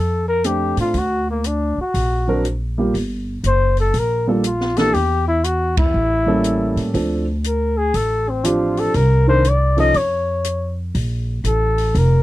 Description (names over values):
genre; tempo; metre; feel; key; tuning
jazz, small-group swing and bop; 120 BPM; 4/4; swing 66% on 8ths; unclear; A4 = 439 Hz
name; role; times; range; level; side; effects
dark trumpet; melody; 0.0-12.2 s; A#3 to Eb5; -19 LUFS; left 2 dB; none
upright bass; bass; 0.0-12.2 s; F1 to A2; -20 LUFS; equal; none
warm grand piano; accompaniment; 0.4-9.9 s; Eb3 to C5; -20 LUFS; right 2 dB; none
open jazz drum kit; drums; 0.4-12.1 s; hi-hat, kick drum, ride cymbal, snare drum; -25 LUFS; equal; none
room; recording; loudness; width
little or no reverb; dry, close 1970s-style studio recording; -16 LUFS; side -16 dB against mid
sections
0.0-12.2 A section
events
band accent 5.7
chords
0.0 Bbmaj9; 0.9 Daug; 2.9 Gm; 4.9 Emadd9; 5.9 A7b9; 6.9 Dm7; 8.9 Cm9; 9.9 Db/F; 10.9 Bbmaj7(no3)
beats
0.44 | 0.94 1.44 1.94 2.44 | 2.94 3.44 3.94 4.45 | 4.95 5.45 5.95 6.45 | 6.95 7.45 7.95 8.45 | 8.95 9.45 9.95 10.45 | 10.95 11.45 11.95